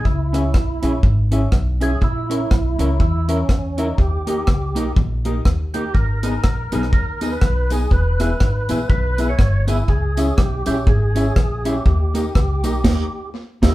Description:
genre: ska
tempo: 122 BPM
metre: 4/4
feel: swing 59% on 8ths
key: unclear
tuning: A4 = 439 Hz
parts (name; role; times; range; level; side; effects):
- percussive tonewheel organ; melody; 0.0-13.7 s; C#4 to C#5; -26 LUFS; right 2 dB; overdrive, chorus vibrato, slow rotary speaker
- upright bass; bass; 0.0-13.7 s; E1 to E2; -20 LUFS; equal; none
- deep reggae drum kit; drums; 0.1-13.7 s; crash cymbal, hi-hat, kick drum, rim click, snare drum; -18 LUFS; equal; none
- mellow electric guitar; accompaniment; 0.3-13.7 s; A#3 to A#4; -25 LUFS; right 1 dB; none
- clear upright piano; stabs; 0.3-13.7 s; D#4 to E5; -30 LUFS; left 4 dB; none
- tambourine; percussion; 6.2-12.7 s; none; -43 LUFS; left 2 dB; none
room: moderate studio reverb, RT60 0.7 s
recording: band playing live in one room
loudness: -16 LUFS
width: side -16 dB against mid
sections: 0.0-13.7 A section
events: band accent 12.8-13.7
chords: 0.1 C#m; 2.0 A#dim; 4.0 D#; 6.0 G#m; 7.9 E; 9.9 C#m; 11.9 D#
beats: | 0.05 0.54 1.03 1.53 | 2.02 2.51 3.00 3.49 | 3.98 4.47 4.97 5.46 | 5.95 6.44 6.93 7.42 | 7.92 8.41 8.90 9.39 | 9.89 10.38 10.87 11.36 | 11.86 12.35 12.84 13.34

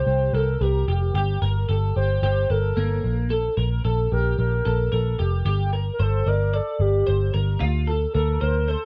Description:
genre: jangly indie pop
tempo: 112 BPM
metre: 4/4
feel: straight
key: unclear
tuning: A4 = 445 Hz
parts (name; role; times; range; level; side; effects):
- hollow clarinet-like synth lead; melody; 0.0-8.9 s; G4 to C5; -29 LUFS; equal; chorus, analog delay
- twelve-string electric guitar; arpeggios; 0.0-8.9 s; Bb3 to D5; -31 LUFS; equal; analog chorus
- vintage muted picked electric bass; bass; 0.0-8.7 s; F1 to D2; -24 LUFS; equal; none
room: moderate small room reverb, RT60 0.5 s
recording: dark, warm production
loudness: -22 LUFS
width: mono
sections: 0.0-5.5 A section; 5.5-8.9 B section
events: none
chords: 0.0 C5; 1.1 Gm; 3.0 Bb5; 5.5 Gm; 7.6 Dm7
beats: 0.07 0.61 | 1.15 1.69 2.23 2.76 | 3.30 3.84 4.38 4.92 | 5.46 6.00 6.53 7.07 | 7.61 8.15 8.68

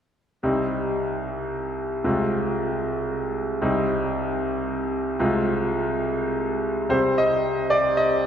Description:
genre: classical, romantic character piece for solo piano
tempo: 64-77 BPM (dotted quarters)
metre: 6/8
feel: rubato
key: C minor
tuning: A4 = 444 Hz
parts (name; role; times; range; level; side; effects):
- bright grand piano; solo; 0.4-8.3 s; C2 to Eb5; -21 LUFS; equal; none
room: wet cathedral reverb, RT60 4.2 s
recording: recorded in a church or concert hall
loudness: -22 LUFS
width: side -8 dB against mid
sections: 0.4-6.9 A section; 6.9-8.3 B section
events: none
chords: 0.4 Cm; 2.0 Fm/C; 3.6 Cm; 5.2 Fm/C; 6.9 Cm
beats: | 0.43 1.26 | 2.05 2.84 | 3.62 4.41 | 5.21 6.04 | 6.93 7.74

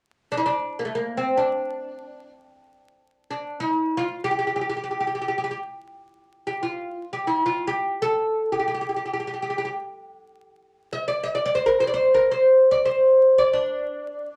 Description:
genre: arabic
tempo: free time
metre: none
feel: none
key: D maqam bayati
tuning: A4 = 440 Hz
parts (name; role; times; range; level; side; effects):
- oud; melody; 0.3-14.4 s; A3 to E5-50c; -23 LUFS; equal; none
room: wet studio ambience, RT60 0.5 s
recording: vinyl crackle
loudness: -23 LUFS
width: mono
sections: 0.0-14.4 A section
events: none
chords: none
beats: free time

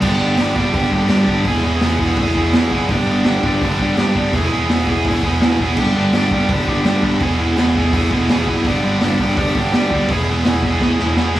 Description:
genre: garage rock duo or trio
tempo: 167 BPM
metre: 4/4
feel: straight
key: unclear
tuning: A4 = 440 Hz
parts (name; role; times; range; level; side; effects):
- cranked stack guitar; riff; 0.0-11.4 s; E2 to G#4; -16 LUFS; right 1 dB; overdrive
- growling picked electric bass; bass; 0.0-11.4 s; E1 to G2; -22 LUFS; equal; overdrive, tube saturation
- crunchy breakbeat drum kit; drums; 0.0-11.4 s; crash cymbal, hi-hat, kick drum, snare drum; -20 LUFS; equal; none
room: moderate large studio reverb, RT60 1.1 s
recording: band playing live in one room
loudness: -14 LUFS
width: side -14 dB against mid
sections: 0.0-11.4 A section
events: drum fill 10.8-11.4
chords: 0.0 G; 1.5 E; 2.9 G; 4.3 E; 5.8 G; 7.2 E; 8.6 G; 10.1 E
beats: | 0.01 0.38 0.73 1.09 | 1.46 1.81 2.17 2.53 | 2.89 3.25 3.61 3.97 | 4.33 4.69 5.05 5.41 | 5.77 6.13 6.49 6.85 | 7.21 7.57 7.93 8.29 | 8.65 9.01 9.37 9.73 | 10.09 10.45 10.81 11.17

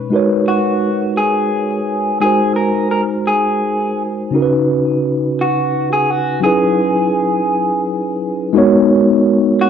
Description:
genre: R&B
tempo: 57 BPM (dotted quarters)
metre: 6/8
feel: straight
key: G# minor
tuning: A4 = 440 Hz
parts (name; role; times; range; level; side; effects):
- mellow tine electric piano; accompaniment; 0.0-9.7 s; C#3 to C#5; -14 LUFS; equal; medium stereo tremolo
- electric guitar through a small old amp; melody; 0.5-9.7 s; F#4 to A#4; -18 LUFS; right 1 dB; spring reverb, cassette tape, plate reverb
room: moderate booth ambience, RT60 0.2 s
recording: home recording on cassette, nothing above 10.3 kHz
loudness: -13 LUFS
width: side -8 dB against mid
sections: 0.0-8.5 A section; 8.5-9.7 B section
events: none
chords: 0.1 G#m11; 2.2 G#9; 4.3 C#7sus4; 6.4 F#13sus4; 8.5 G#m11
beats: | 0.11 1.16 | 2.22 3.27 | 4.32 5.37 | 6.43 7.48 | 8.53 9.58

